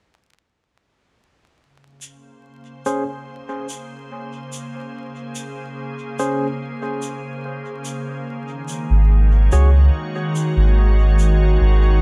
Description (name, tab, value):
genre	ambient dub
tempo	72 BPM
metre	4/4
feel	straight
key	Bb minor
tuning	A4 = 440 Hz
part	soft additive organ-like pad	sustained chords	2.6-12.0 s	Db3 to Db5	-29 LUFS	equal	ensemble chorus, built-in reverb
part	shaker	drums	2.0-11.4 s	none	-40 LUFS	equal	dub echo
part	barky tine electric piano	stabs	2.9-9.7 s	Db4 to Db5	-30 LUFS	equal	low-pass filter, dub echo
part	soft dub sub bass	bass	8.9-12.0 s	Ab1 to Db2	-15 LUFS	equal	none
room	light reverb, studio ambience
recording	vinyl crackle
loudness	-19 LUFS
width	mono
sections	1.6-12.0 A section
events	fade-in on ambient pad 1.6-12.0; filter sweep on tine electric piano 1.6-12.0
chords	1.6 Bbm9; 8.3 Ab7sus4